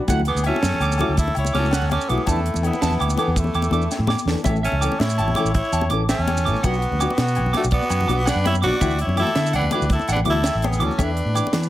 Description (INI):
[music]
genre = highlife guitar band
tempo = 110 BPM (dotted quarters)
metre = 12/8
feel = straight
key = A major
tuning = A4 = 440 Hz
[part]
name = nylon-string guitar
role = accompaniment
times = 0.0-11.5 s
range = E3 to A4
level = -28 LUFS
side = left 4 dB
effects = none
[part]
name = electric guitar at the edge of break-up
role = arpeggios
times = 0.1-11.5 s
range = D5 to D6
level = -27 LUFS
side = right 5 dB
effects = none
[part]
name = fingered electric bass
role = bass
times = 0.1-11.7 s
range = A1 to E3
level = -22 LUFS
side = equal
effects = none
[part]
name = tight funk drum kit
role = drums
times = 0.1-11.6 s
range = hi-hat, kick drum, snare drum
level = -25 LUFS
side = right 1 dB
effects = none
[part]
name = agogo bells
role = percussion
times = 0.1-11.5 s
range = none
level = -33 LUFS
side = left 5 dB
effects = none
[part]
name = congas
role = percussion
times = 0.1-11.6 s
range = none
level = -29 LUFS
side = left 4 dB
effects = none
[part]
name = maracas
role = percussion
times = 0.1-11.7 s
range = none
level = -34 LUFS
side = right 6 dB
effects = none
[part]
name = raspy tenor saxophone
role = melody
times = 0.3-11.7 s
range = A3 to F#4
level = -25 LUFS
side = right 1 dB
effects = none
[part]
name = clear trumpet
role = second line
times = 0.3-11.7 s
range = E4 to D5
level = -31 LUFS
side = left 3 dB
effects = none
[sound]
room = light reverb, small room reverb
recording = none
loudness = -18 LUFS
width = side -14 dB against mid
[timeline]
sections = 0.0-4.5 A section; 4.5-11.7 B section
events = drum fill 3.9-4.5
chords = 0.1 Dadd9; 2.3 E7sus4; 4.5 A; 6.6 Bm; 8.8 Dadd9; 11.0 E7sus4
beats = | 0.09 0.64 1.18 1.73 | 2.28 2.82 3.37 3.91 | 4.46 5.00 5.55 6.09 | 6.64 7.18 7.73 8.27 | 8.82 9.36 9.91 10.45 | 10.99 11.54